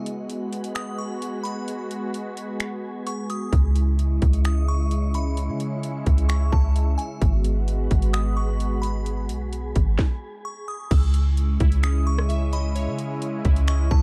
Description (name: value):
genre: hip hop, atmospheric cloud-rap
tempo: 130 BPM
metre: 4/4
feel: half-time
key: C# minor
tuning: A4 = 441 Hz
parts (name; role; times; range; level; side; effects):
- sweeping resonant pad; sustained chords; 0.0-14.0 s; C#3 to F#4; -33 LUFS; equal; chorus, sidechain pumping
- wind-like tuned noise texture; texture; 0.0-14.0 s; E4 to D#6; -43 LUFS; equal; built-in reverb
- trap drum kit; drums; 0.1-14.0 s; crash cymbal, finger snaps, hi-hat, kick drum, rim click, snare drum; -26 LUFS; equal; none
- delicate synth tine bell; melody; 0.8-14.0 s; G#5 to D#6; -37 LUFS; equal; chorus, phaser, digital delay
- soft 808-style bass; bass; 3.5-14.0 s; G#1 to C#3; -24 LUFS; equal; none
- glassy digital keys; arpeggios; 10.9-14.0 s; C#4 to E6; -38 LUFS; equal; chorus, digital delay
room: little or no reverb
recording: dark, warm production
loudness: -24 LUFS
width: mono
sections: 0.0-10.9 A section; 10.9-14.0 B section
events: break 0.0-3.5; stop 10.0-10.9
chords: 0.0 G#m7; 3.5 C#madd9; 7.2 G#m7; 10.9 C#madd9